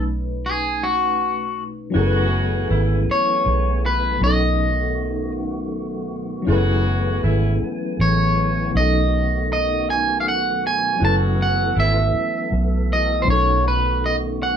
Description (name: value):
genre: slow six-eight R&B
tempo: 53 BPM (dotted quarters)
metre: 6/8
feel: straight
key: F# dorian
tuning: A4 = 440 Hz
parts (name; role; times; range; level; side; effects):
- electric guitar at the edge of break-up; melody; 0.0-14.6 s; F#4 to A5; -20 LUFS; equal; none
- FM electric piano with tremolo; accompaniment; 0.0-14.6 s; B2 to B4; -25 LUFS; left 2 dB; none
- vintage muted fingered electric bass; bass; 0.0-14.6 s; F#1 to C#2; -21 LUFS; equal; none
- tonewheel organ; sustained chords; 1.9-14.6 s; D#3 to G#5; -29 LUFS; right 1 dB; slow rotary speaker
- warm horn section; stabs; 1.9-3.0, 6.5-7.5, 11.0-12.1 s; C#3 to F#4; -27 LUFS; equal; none
room: moderate studio reverb, RT60 0.5 s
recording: band playing live in one room, nothing above 10.9 kHz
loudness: -18 LUFS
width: side -8 dB against mid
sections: 0.0-1.9 A section; 1.9-14.6 B section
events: none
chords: 0.0 B7; 1.9 F#m11; 4.2 B7; 6.5 F#m11; 8.7 B7; 11.0 F#m11; 13.3 B7